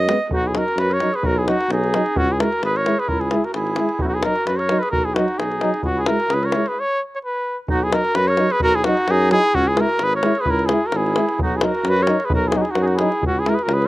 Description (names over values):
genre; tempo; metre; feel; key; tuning
balkan folk, Balkan brass band; 130 BPM; 2/4; swing 55% on 16ths; B major; A4 = 440 Hz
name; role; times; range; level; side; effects
clear clarinet; second line; 0.0-13.9 s; C#4 to D#5; -26 LUFS; right 3 dB; none
warm tuba; bass; 0.0-13.9 s; G#1 to F#2; -23 LUFS; equal; none
dark euphonium; accompaniment; 0.1-13.6 s; F#3 to G#3; -25 LUFS; right 4 dB; none
warm trombone; accompaniment; 0.1-13.6 s; B3 to E4; -25 LUFS; left 4 dB; none
davul; percussion; 0.1-13.9 s; none; -25 LUFS; left 2 dB; slapback echo
mellow cornet; melody; 0.3-13.9 s; E4 to C#5; -20 LUFS; equal; none
room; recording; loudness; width
little or no reverb; recorded outdoors, with no room sound; -17 LUFS; side -17 dB against mid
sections
0.3-7.7 A section; 7.7-13.9 A section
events
stop 6.8-7.7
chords
0.3 B; 2.2 C#m; 4.0 B; 5.8 C#m; 6.8 N.C.; 7.7 B; 9.5 C#m; 11.4 B; 13.2 C#m